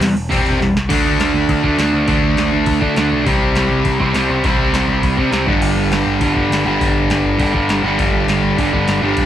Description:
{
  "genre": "punk rock",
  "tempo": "203 BPM",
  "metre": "4/4",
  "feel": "straight",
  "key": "unclear",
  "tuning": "A4 = 440 Hz",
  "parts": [
    { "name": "distorted electric guitar", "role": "riff", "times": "0.0-9.3 s", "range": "G2 to D4", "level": "-20 LUFS", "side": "left 11 dB", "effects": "distortion, cassette tape" },
    { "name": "distorted electric guitar", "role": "riff", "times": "0.0-9.3 s", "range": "G2 to D4", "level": "-17 LUFS", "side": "right 4 dB", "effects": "distortion, cassette tape" },
    { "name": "growling picked electric bass", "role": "bass", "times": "0.0-9.3 s", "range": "E1 to D3", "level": "-20 LUFS", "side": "equal", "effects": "overdrive" },
    { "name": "booming analog drum machine", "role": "drums", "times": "0.0-9.2 s", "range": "crash cymbal, hi-hat, kick drum, snare drum", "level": "-20 LUFS", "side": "equal", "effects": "cassette tape" }
  ],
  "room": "digital ambience",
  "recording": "home recording on cassette",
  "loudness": "-13 LUFS",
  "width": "side -11 dB against mid",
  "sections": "0.9-9.3 A section",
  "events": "drum fill 0.6",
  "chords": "0.0 C/E; 0.9 D5; 3.3 C5; 5.5 G5"
}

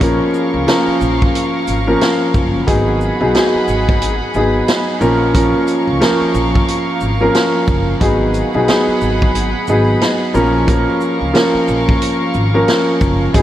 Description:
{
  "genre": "hip hop, boom-bap hip-hop",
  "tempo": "90 BPM",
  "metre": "4/4",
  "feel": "swing 59% on 16ths",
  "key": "unclear",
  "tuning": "A4 = 440 Hz",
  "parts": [
    { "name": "dark concert grand piano", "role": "accompaniment", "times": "0.0-13.4 s", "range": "E#3 to A#4", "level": "-14 LUFS", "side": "equal", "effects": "cassette tape, high-pass filter, low-pass filter" },
    { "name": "warm studio string section", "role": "sustained chords", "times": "0.0-13.4 s", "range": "G#4 to C#6", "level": "-23 LUFS", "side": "equal", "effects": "high-pass filter, low-pass filter" },
    { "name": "upright bass", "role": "bass", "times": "0.0-13.4 s", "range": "F#1 to C#2", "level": "-19 LUFS", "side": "equal", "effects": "none" },
    { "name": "vintage drum kit", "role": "drums", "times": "0.0-13.4 s", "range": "hi-hat, kick drum, shaker, snare drum", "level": "-19 LUFS", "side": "equal", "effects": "vintage 12-bit sampler grit" }
  ],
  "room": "moderate huge ambient reverb, RT60 7.8 s",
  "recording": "dreamy mix soaked in reverb, vinyl crackle",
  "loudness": "-12 LUFS",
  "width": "side -12 dB against mid",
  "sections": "0.0-13.4 A section",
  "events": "none",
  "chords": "0.0 A#m; 2.7 G#m7; 5.0 A#m; 8.0 G#m7; 10.3 A#m"
}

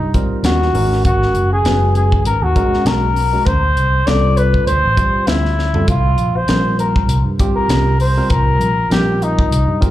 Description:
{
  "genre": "electric jazz fusion",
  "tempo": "99 BPM",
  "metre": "4/4",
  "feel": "swing 56% on 16ths",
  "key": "C minor",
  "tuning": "A4 = 440 Hz",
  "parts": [
    { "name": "dark trumpet", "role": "melody", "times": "0.0-9.8 s", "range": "Eb4 to D5", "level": "-18 LUFS", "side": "left 1 dB", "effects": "slapback echo" },
    { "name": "fingered electric bass", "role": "bass", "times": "0.0-9.8 s", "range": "Gb1 to G2", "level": "-16 LUFS", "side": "equal", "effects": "none" },
    { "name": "barky tine electric piano", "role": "accompaniment", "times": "0.1-9.9 s", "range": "G3 to C5", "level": "-22 LUFS", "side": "right 1 dB", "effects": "overdrive, lush chorus, slapback echo" },
    { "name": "crisp fusion drum kit", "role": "drums", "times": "0.1-9.9 s", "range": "hi-hat, kick drum, snare drum, toms", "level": "-19 LUFS", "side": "equal", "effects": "none" }
  ],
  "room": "small room ambience",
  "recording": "live gig heard through the venue's PA, club reverb",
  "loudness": "-12 LUFS",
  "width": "side -14 dB against mid",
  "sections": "0.0-9.9 A section",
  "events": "drum fill 5.6-5.9",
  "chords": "0.0 Cm7; 0.8 Abm11; 3.5 Dm11; 5.9 C7(no3)"
}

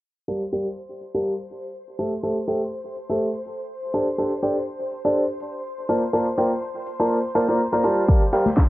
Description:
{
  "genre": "piano house",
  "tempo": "123 BPM",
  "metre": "4/4",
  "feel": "swing 55% on 16ths",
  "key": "G dorian",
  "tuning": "A4 = 440 Hz",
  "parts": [
    { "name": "string machine, violins", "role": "sustained chords", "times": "0.3-8.7 s", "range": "C5 to C6", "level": "-33 LUFS", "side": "left 1 dB", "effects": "ensemble chorus, sidechain pumping" },
    { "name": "clear concert grand piano", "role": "riff", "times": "0.3-8.4 s", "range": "G3 to Bb5", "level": "-22 LUFS", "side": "equal", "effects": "sidechain pumping, low-pass filter, tape echo" },
    { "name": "house drum kit", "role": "drums", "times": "0.5-8.7 s", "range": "hi-hat, snare drum", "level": "-23 LUFS", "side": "equal", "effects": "overdrive, cassette tape" },
    { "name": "electronic kick drum", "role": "drums", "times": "8.1-8.7 s", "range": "none", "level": "-16 LUFS", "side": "equal", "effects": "overdrive, cassette tape" },
    { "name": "shaker and snare drum", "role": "drums", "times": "8.1-8.7 s", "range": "none", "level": "-33 LUFS", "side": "right 1 dB", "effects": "high-pass filter on snare, cassette tape, high-pass filter on perc, high-pass filter on room" },
    { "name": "tambourine and congas", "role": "percussion", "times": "8.1-8.7 s", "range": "none", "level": "-24 LUFS", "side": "left 2 dB", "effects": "none" }
  ],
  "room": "light reverb",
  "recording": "home recording on cassette, low-pass filter",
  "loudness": "-21 LUFS",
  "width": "side -17 dB against mid",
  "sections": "0.3-8.7 A section",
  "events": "filter sweep on grand piano 0.3-8.7; filter sweep 0.3-8.7",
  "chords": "0.3 Gm9; 2.0 Am7; 3.9 D7sus4; 5.9 Gm9"
}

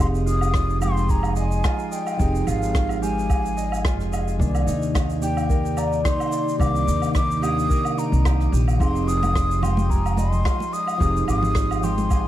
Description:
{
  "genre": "sunset chillout",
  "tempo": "109 BPM",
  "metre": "4/4",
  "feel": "swing 54% on 16ths",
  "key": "F minor",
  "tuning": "A4 = 440 Hz",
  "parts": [
    { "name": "breathy mellow concert flute", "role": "melody", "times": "0.0-12.3 s", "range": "F5 to Eb6", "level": "-27 LUFS", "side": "left 1 dB", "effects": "tape echo, shimmer reverb" },
    { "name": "mellow tine electric piano", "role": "accompaniment", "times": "0.0-12.3 s", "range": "C3 to Ab5", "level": "-27 LUFS", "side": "equal", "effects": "auto-pan, shimmer reverb" },
    { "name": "concert harp", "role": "arpeggios", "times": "0.0-12.3 s", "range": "D4 to Eb5", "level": "-30 LUFS", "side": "left 1 dB", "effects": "tape echo, shimmer reverb" },
    { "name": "upright bass", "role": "bass", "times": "0.0-12.3 s", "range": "F1 to Eb2", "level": "-23 LUFS", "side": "equal", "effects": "tube saturation" },
    { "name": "woodblock, shaker and rim click", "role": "drums", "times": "0.0-12.2 s", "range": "none", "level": "-31 LUFS", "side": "right 1 dB", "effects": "none" },
    { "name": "electronic kick drum", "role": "drums", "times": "0.5-12.2 s", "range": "none", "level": "-22 LUFS", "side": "equal", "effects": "overdrive" },
    { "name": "congas", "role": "percussion", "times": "9.2-12.1 s", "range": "none", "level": "-31 LUFS", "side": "right 4 dB", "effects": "none" }
  ],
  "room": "light reverb, studio ambience",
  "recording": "none",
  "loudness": "-19 LUFS",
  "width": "side -13 dB against mid",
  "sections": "0.0-12.3 A section",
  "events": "none",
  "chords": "0.0 Fm9; 4.4 Cm9; 8.8 Fm9"
}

